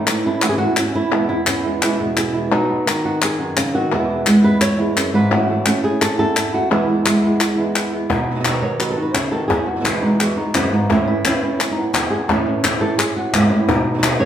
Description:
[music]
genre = flamenco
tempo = 172 BPM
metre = 4/4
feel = straight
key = E major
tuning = A4 = 440 Hz
[part]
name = flamenco guitar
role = melody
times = 0.0-14.3 s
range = E2 to C#5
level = -18 LUFS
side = right 1 dB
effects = none
[part]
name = flamenco guitar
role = stabs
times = 0.0-14.3 s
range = E2 to F#4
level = -23 LUFS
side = right 2 dB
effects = none
[part]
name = palmas hand claps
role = percussion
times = 0.1-14.2 s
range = none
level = -22 LUFS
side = left 3 dB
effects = none
[part]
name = cajon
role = percussion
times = 8.1-14.2 s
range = none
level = -24 LUFS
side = left 2 dB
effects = none
[sound]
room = wet large studio reverb, RT60 1.2 s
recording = band playing live in one room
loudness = -15 LUFS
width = side -10 dB against mid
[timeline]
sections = 0.0-8.1 A section; 8.1-14.3 B section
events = nylon-string guitar solo 8.1-14.3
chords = 0.0 A; 1.1 E; 2.5 B; 3.9 E; 5.3 A; 6.7 E; 8.1 B; 9.5 Eadd9; 10.9 Aadd9; 13.7 B

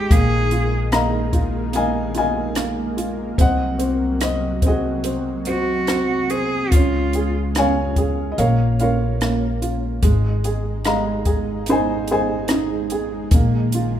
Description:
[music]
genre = acoustic folk-pop ballad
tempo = 73 BPM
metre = 4/4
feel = straight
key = unclear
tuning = A4 = 440 Hz
[part]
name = felt-muted upright piano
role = melody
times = 0.0-14.0 s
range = Ab3 to Bb5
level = -21 LUFS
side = right 1 dB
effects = none
[part]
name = rich cello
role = second line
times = 0.0-7.3 s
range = F4 to Ab4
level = -23 LUFS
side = right 2 dB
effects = none
[part]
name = analog string pad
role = sustained chords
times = 0.0-14.0 s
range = C3 to F4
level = -29 LUFS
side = right 1 dB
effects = ensemble chorus
[part]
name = upright bass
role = bass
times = 0.0-14.0 s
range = Ab1 to Db2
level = -23 LUFS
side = left 1 dB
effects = none
[part]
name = compact cocktail drum kit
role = drums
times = 0.1-13.9 s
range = hi-hat, kick drum, rim click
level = -19 LUFS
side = equal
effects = none
[sound]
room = moderate recital hall reverb, RT60 1.4 s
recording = minimal, uncompressed stereo recording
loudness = -17 LUFS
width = side -10 dB against mid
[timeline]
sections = 0.0-14.0 A section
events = none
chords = 0.1 Bb7sus4; 3.4 Ab7/C; 6.7 Db; 8.4 Bbm; 10.0 Fm7/Ab; 13.3 Bb7sus4

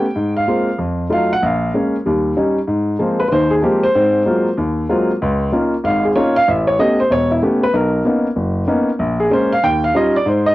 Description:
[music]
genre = jazz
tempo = 190 BPM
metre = 4/4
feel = swing 64% on 8ths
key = Ab major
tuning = A4 = 441 Hz
[part]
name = warm baby grand piano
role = solo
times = 0.0-10.5 s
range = E1 to G5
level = -14 LUFS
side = equal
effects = none
[sound]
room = moderate small room reverb, RT60 0.5 s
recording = home recording on cassette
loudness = -14 LUFS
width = side -17 dB against mid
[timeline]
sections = 0.0-2.7 A section; 2.7-10.5 B section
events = none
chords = 0.1 Ab69; 0.8 F7b9; 1.4 Bbm7; 2.0 Eb7; 2.7 Ab69; 3.9 Ab13; 5.2 Db69; 6.5 A9; 7.7 Bmaj9; 9.0 Bbm7; 9.6 Eb9

